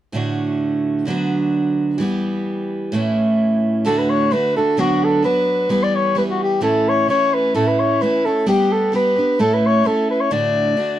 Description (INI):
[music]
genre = celtic folk, Celtic polka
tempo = 130 BPM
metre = 2/4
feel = swing 53% on 8ths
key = D major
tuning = A4 = 440 Hz
[part]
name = picked steel-string acoustic guitar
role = accompaniment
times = 0.1-11.0 s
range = D2 to A4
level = -18 LUFS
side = right 2 dB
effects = none
[part]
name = mellow soprano saxophone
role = melody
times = 3.9-11.0 s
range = F#4 to D5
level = -17 LUFS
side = left 1 dB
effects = none
[sound]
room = moderate studio reverb, RT60 0.5 s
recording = dark, warm production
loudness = -16 LUFS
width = side -12 dB against mid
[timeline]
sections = 0.1-3.9 A section; 3.9-11.0 B section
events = none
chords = 0.1 D; 1.1 Bm/D; 2.0 Em; 2.9 A; 3.9 D; 4.8 Bm/D; 5.7 Em; 6.6 A; 8.5 G; 9.4 A; 10.3 D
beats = | 0.14 0.61 | 1.07 1.54 | 2.00 2.46 | 2.93 3.39 | 3.85 4.32 | 4.78 5.24 | 5.70 6.16 | 6.62 7.09 | 7.55 8.01 | 8.47 8.93 | 9.39 9.85 | 10.31 10.77